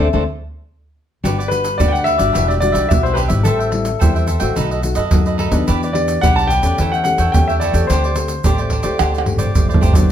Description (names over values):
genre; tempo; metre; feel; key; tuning
samba and choro; 108 BPM; 4/4; straight; unclear; A4 = 440 Hz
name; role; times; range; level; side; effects
cavaquinho; accompaniment; 0.0-10.1 s; D4 to G5; -24 LUFS; right 5 dB; none
nylon-string guitar; accompaniment; 0.0-10.1 s; A2 to B4; -22 LUFS; left 4 dB; none
upright bass; bass; 0.0-10.1 s; E1 to F#2; -19 LUFS; equal; none
surdo, egg shaker, pandeiro and tamborim; percussion; 0.1-10.1 s; none; -18 LUFS; right 1 dB; none
warm concert grand piano; melody; 1.5-9.5 s; A4 to A5; -19 LUFS; left 1 dB; plate reverb
room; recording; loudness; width
moderate studio reverb, RT60 0.8 s; none; -14 LUFS; side -10 dB against mid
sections
0.0-1.2 A section; 1.2-10.1 B section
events
band accent 0.0-1.2; drum fill 9.0-10.1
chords
0.0 D5; 1.2 Gmaj7; 2.4 Em9; 3.5 Am7; 4.6 B7; 5.7 Em7; 6.8 A7/E; 7.9 D7sus4